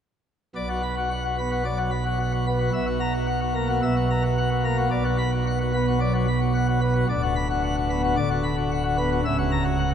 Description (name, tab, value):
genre	classical, organ toccata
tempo	110 BPM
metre	4/4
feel	straight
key	B minor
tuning	A4 = 440 Hz
part	pipe organ, plenum	solo	0.6-9.9 s	C#1 to B5	-21 LUFS	equal	none
room	wet cathedral reverb, RT60 5.2 s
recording	none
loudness	-21 LUFS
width	side -8 dB against mid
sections	0.6-9.9 A section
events	none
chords	0.6 Bm; 2.7 F#7/B; 4.9 Bm; 7.1 Bm/D; 9.2 F#7/C#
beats	| 0.55 1.10 1.65 2.19 | 2.74 3.28 3.82 4.37 | 4.91 5.45 6.00 6.54 | 7.08 7.62 8.16 8.71 | 9.24 9.78